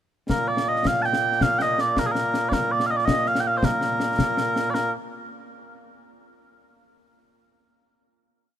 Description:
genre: scottish traditional, Scottish pipe music.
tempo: 108 BPM (dotted quarters).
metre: 6/8.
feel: straight.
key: Bb major.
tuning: A4 = 439 Hz.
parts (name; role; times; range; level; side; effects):
mellow small bagpipes; melody; 0.3-4.9 s; Bb2 to A5; -22 LUFS; right 1 dB; none.
concert snare drum and concert bass drum; drums; 0.3-4.9 s; none; -27 LUFS; left 2 dB; none.
room: light reverb.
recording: minimal, uncompressed stereo recording.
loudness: -20 LUFS.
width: side -10 dB against mid.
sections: 0.3-4.7 A section; 4.7-5.9 final note.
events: none.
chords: none.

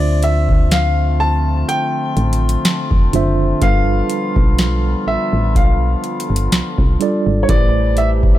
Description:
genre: contemporary R&B.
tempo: 62 BPM.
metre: 4/4.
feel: swing 54% on 16ths.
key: D dorian.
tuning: A4 = 440 Hz.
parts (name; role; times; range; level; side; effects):
warm grand piano; melody; 0.0-8.1 s; C#5 to A5; -21 LUFS; left 2 dB; ping-pong delay.
mellow tine electric piano; accompaniment; 0.0-8.4 s; D3 to E5; -21 LUFS; right 4 dB; medium stereo tremolo.
warm woodwind section; sustained chords; 0.0-8.4 s; C3 to G4; -24 LUFS; left 3 dB; none.
solid FM bass; bass; 0.0-8.4 s; F1 to D2; -17 LUFS; equal; none.
booming analog drum machine; drums; 0.2-8.4 s; hi-hat, kick drum, snare drum; -15 LUFS; equal; none.
room: digital ambience.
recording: none.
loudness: -13 LUFS.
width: side -14 dB against mid.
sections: 0.0-8.4 A section.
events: none.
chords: 0.0 Dm7; 3.6 G7; 7.5 Am7.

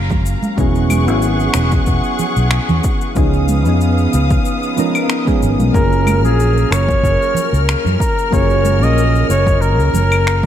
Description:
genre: sunset chillout.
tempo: 93 BPM.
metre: 4/4.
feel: swing 54% on 16ths.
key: F# major.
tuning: A4 = 439 Hz.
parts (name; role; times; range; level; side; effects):
soft electric-piano-like synth keys; accompaniment; 0.0-10.5 s; E#3 to A#4; -19 LUFS; right 1 dB; chorus, auto-pan, tape echo.
rich symphonic string section; sustained chords; 0.0-10.5 s; F#3 to E#6; -22 LUFS; left 3 dB; none.
fingered electric bass; bass; 0.0-10.5 s; E1 to F#2; -15 LUFS; equal; none.
electronic cabasa, claves and finger snaps; drums; 0.1-10.4 s; none; -24 LUFS; left 2 dB; overdrive.
electronic kick drum; drums; 0.1-10.5 s; none; -18 LUFS; equal; overdrive.
congas and bongos; percussion; 0.1-10.5 s; none; -24 LUFS; right 2 dB; none.
clear flugelhorn; melody; 5.7-10.5 s; G#4 to D#5; -18 LUFS; equal; digital delay.
room: light reverb, small room ambience.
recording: dark, warm production.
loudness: -12 LUFS.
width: side -10 dB against mid.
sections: 0.0-10.5 A section.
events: none.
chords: 0.0 F#maj7; 0.6 E69; 3.2 C#9; 5.7 F#maj7.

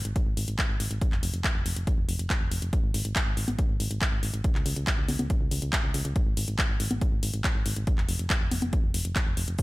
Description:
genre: uplifting trance.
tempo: 140 BPM.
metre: 4/4.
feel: straight.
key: unclear.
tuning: A4 = 441 Hz.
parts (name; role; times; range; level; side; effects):
solid FM bass; bass; 0.0-9.6 s; F1 to Db2; -30 LUFS; equal; sidechain pumping.
big-room dance drum kit; drums; 0.1-9.6 s; congas, handclaps, hi-hat, shaker; -31 LUFS; left 1 dB; studio reverb.
electronic kick drum; drums; 0.2-9.6 s; none; -27 LUFS; equal; studio reverb.
room: digital ambience.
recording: none.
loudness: -25 LUFS.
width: side -20 dB against mid.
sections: 0.0-9.6 A section.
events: none.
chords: none.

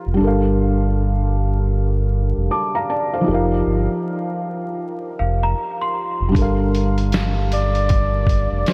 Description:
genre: lo-fi hip hop.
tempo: 78 BPM.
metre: 4/4.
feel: swing 63% on 16ths.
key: G minor.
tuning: A4 = 440 Hz.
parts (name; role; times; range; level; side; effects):
felt-muted upright piano; accompaniment; 0.0-8.7 s; F3 to D6; -24 LUFS; equal; low-pass filter.
sub bass with octave; bass; 0.1-8.6 s; F1 to G1; -22 LUFS; equal; none.
worn celesta; second line; 5.2-6.3 s; F5 to C6; -29 LUFS; equal; low-pass filter, delay.
lo-fi sampler-style drum kit; drums; 6.3-8.7 s; hi-hat, kick drum, snare drum; -23 LUFS; equal; none.
breathy flugelhorn; melody; 7.5-8.7 s; C5 to D5; -29 LUFS; equal; low-pass filter, delay.
room: moderate huge ambient reverb, RT60 8.3 s.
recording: dreamy mix soaked in reverb, vinyl crackle.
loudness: -19 LUFS.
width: mono.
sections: 0.0-8.7 A section.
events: none.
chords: 0.2 Gm9; 3.3 F7sus4; 6.4 Gm9.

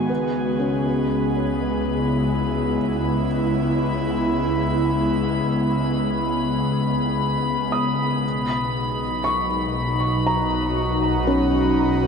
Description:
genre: ambient.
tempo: 59 BPM.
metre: 4/4.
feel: straight.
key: unclear.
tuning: A4 = 440 Hz.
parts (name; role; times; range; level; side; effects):
airy breathy pad; sustained chords; 0.0-12.1 s; B2 to G#4; -21 LUFS; equal; chorus.
felt-muted upright piano; arpeggios; 0.0-12.1 s; C#4 to D#6; -26 LUFS; equal; diffuse ambient delay.
clear chamber double bass section; bass; 0.0-12.1 s; B1 to C#2; -30 LUFS; equal; none.
drifting glass-harmonics texture; texture; 0.0-12.1 s; G#5 to B5; -28 LUFS; left 2 dB; chorus, built-in reverb.
room: wet huge ambient reverb, RT60 8.7 s.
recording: in a vast, echoing space.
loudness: -19 LUFS.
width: side -6 dB against mid.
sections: 0.0-12.1 A section.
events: fade-in on felt piano 0.0-12.1.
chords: 0.1 C#m7; 8.2 Bmaj7.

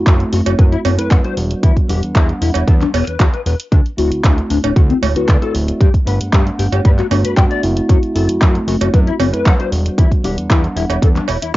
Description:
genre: nu-disco, nu disco.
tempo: 115 BPM.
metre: 4/4.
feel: straight.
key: E minor.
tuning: A4 = 435 Hz.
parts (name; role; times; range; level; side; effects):
mellow tine electric piano; accompaniment; 0.0-11.3 s; G3 to F#5; -20 LUFS; right 1 dB; phaser, sidechain pumping, cassette tape, analog delay.
fat analog bass; bass; 0.0-11.6 s; D1 to G2; -18 LUFS; equal; tube saturation.
mellow electric guitar; riff; 0.1-11.6 s; A3 to G5; -21 LUFS; left 7 dB; ensemble chorus, cassette tape, analog delay.
electronic kick drum; drums; 0.1-11.6 s; none; -12 LUFS; equal; none.
pop drum kit; drums; 0.1-11.5 s; handclaps, hi-hat; -23 LUFS; equal; none.
cowbell; percussion; 0.5-11.4 s; none; -22 LUFS; right 12 dB; none.
room: little or no reverb.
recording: home recording on cassette, nothing above 7.5 kHz.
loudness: -12 LUFS.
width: side -17 dB against mid.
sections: 0.0-11.6 A section.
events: none.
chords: 0.0 F#m7b5; 1.4 Em7; 3.7 D7; 5.8 Gmaj7; 7.6 F#m7b5; 9.7 Em7.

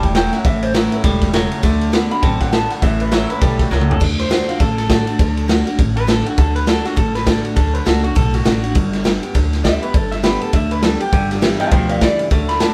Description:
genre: rockabilly.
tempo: 202 BPM.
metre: 4/4.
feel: swing 60% on 8ths.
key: D major.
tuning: A4 = 442 Hz.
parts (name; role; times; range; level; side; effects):
electric guitar through a small old amp; melody; 0.0-12.7 s; F4 to B5; -25 LUFS; equal; none.
picked steel-string acoustic guitar; accompaniment; 0.0-12.7 s; E2 to G4; -25 LUFS; equal; none.
twangy electric guitar; riff; 0.0-4.0, 11.1-12.7 s; G2 to C4; -24 LUFS; equal; none.
upright bass; bass; 0.0-12.7 s; E1 to D2; -23 LUFS; equal; none.
raw garage drum kit; drums; 0.0-12.7 s; crash cymbal, kick drum, ride cymbal, snare drum, toms; -20 LUFS; equal; none.
room: light reverb.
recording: band playing live in one room.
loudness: -16 LUFS.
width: mono.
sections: 0.0-4.0 A section; 4.0-12.7 B section.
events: drum fill 3.7; clean electric guitar solo 4.0-12.7.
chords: 0.0 A; 1.6 D; 2.8 A; 4.0 D; 8.8 G.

